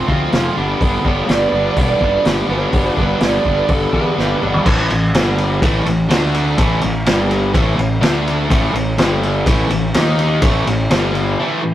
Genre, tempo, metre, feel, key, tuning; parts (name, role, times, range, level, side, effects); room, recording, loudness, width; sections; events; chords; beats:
blues rock power trio and southern rock; 125 BPM; 4/4; straight; A4 = 440 Hz
crunchy overdriven guitar; riff; 0.0-11.7 s; G2 to F4; -18 LUFS; equal
fuzz fingered electric bass; bass; 0.1-11.3 s; E1 to E2; -19 LUFS; equal; overdrive
vintage drum kit; drums; 0.1-11.3 s; crash cymbal, hi-hat, kick drum, ride cymbal, snare drum, toms; -18 LUFS; equal
lead guitar through a small cranked amp; melody; 1.1-4.4 s; A4 to D5; -19 LUFS; right 4 dB; overdrive
biting lead guitar; second line; 1.1-4.4 s; D4 to B4; -29 LUFS; left 2 dB
moderate stone room reverb, RT60 1.0 s; rough rehearsal-room recording, tube saturation; -13 LUFS; side -13 dB against mid
0.0-4.7 A section; 4.7-11.7 B section
drum fill 4.2-4.7
0.0 F; 0.6 G; 4.7 A5; 5.1 G5; 5.6 A5; 6.1 D5; 6.6 A5; 7.1 G5; 7.5 A5; 8.0 D5; 8.5 A5; 9.0 G5; 9.5 A5; 9.9 D#5; 10.4 A5; 10.9 G5
0.33 | 0.81 1.29 1.77 2.26 | 2.74 3.22 3.70 4.18 | 4.66 5.14 5.62 6.10 | 6.58 7.06 7.54 8.02 | 8.50 8.98 9.46 9.94 | 10.42 10.90 11.38